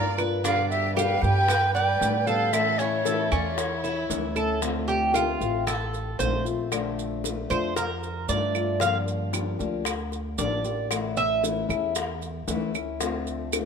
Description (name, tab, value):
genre	latin, Cuban son and guajira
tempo	115 BPM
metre	4/4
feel	straight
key	D minor from 4.6 s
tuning	A4 = 439 Hz
part	concert flute	melody	0.0-4.4 s	C#5 to Bb5	-26 LUFS	right 1 dB	none
part	warm symphonic violin section	second line	0.0-4.4 s	E4 to D5	-34 LUFS	right 1 dB	none
part	fingerpicked plugged-in steel-string acoustic guitar	accompaniment	0.0-13.7 s	B2 to G4	-30 LUFS	left 5 dB	none
part	Cuban tres	arpeggios	0.0-11.4 s	C#4 to F5	-28 LUFS	right 3 dB	none
part	upright bass	bass	0.0-13.7 s	A1 to A2	-31 LUFS	equal	none
part	bongos	percussion	0.2-13.7 s	none	-33 LUFS	left 6 dB	none
part	claves	percussion	0.2-13.7 s	none	-34 LUFS	right 6 dB	none
part	maracas	percussion	0.2-13.7 s	none	-34 LUFS	right 8 dB	none
room	moderate plate reverb, RT60 3.2 s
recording	minimal, uncompressed stereo recording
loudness	-23 LUFS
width	side -6 dB against mid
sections	0.0-4.6 A section; 4.6-13.7 B section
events	Cuban tres solo 4.6-13.7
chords	0.4 G; 2.5 A; 4.6 Dm7; 6.7 Bbmaj7; 8.8 Gm7; 10.9 A; 13.0 Dm7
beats	| 0.44 0.97 1.49 2.02 | 2.54 3.06 3.58 4.11 | 4.63 5.16 5.68 6.20 | 6.72 7.25 7.77 8.29 | 8.82 9.34 9.87 10.39 | 10.91 11.44 11.96 12.48 | 13.01 13.53